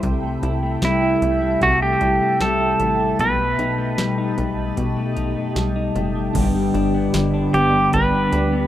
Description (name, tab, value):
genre	dream pop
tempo	76 BPM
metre	4/4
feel	straight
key	unclear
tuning	A4 = 440 Hz
part	shimmering ambient pad	sustained chords	0.0-8.7 s	G4 to D6	-29 LUFS	right 2 dB	chorus, built-in reverb, phaser, plate reverb
part	clean electric guitar	arpeggios	0.0-8.7 s	G2 to E4	-22 LUFS	left 3 dB	wide subtle chorus, tape echo
part	plucky analog bass	bass	0.0-8.7 s	F#1 to G2	-26 LUFS	equal	none
part	booming analog drum machine	drums	0.0-8.5 s	crash cymbal, hi-hat, kick drum, snare drum, tambourine	-26 LUFS	equal	none
part	pedal steel guitar	melody	0.8-8.7 s	E4 to B4	-20 LUFS	right 2 dB	tape echo, plate reverb
part	electric guitar at the edge of break-up	accompaniment	6.3-8.7 s	G2 to G4	-24 LUFS	right 3 dB	harmonic tremolo, wide subtle chorus
room	moderate studio ambience, RT60 0.5 s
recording	rough home demo mix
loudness	-17 LUFS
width	side -12 dB against mid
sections	0.0-6.4 A section; 6.4-8.7 B section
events	none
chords	0.0 Am7/C; 3.2 B7b13; 6.4 G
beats	| 0.04 0.83 1.61 2.40 | 3.19 3.98 4.77 5.56 | 6.35 7.14 7.93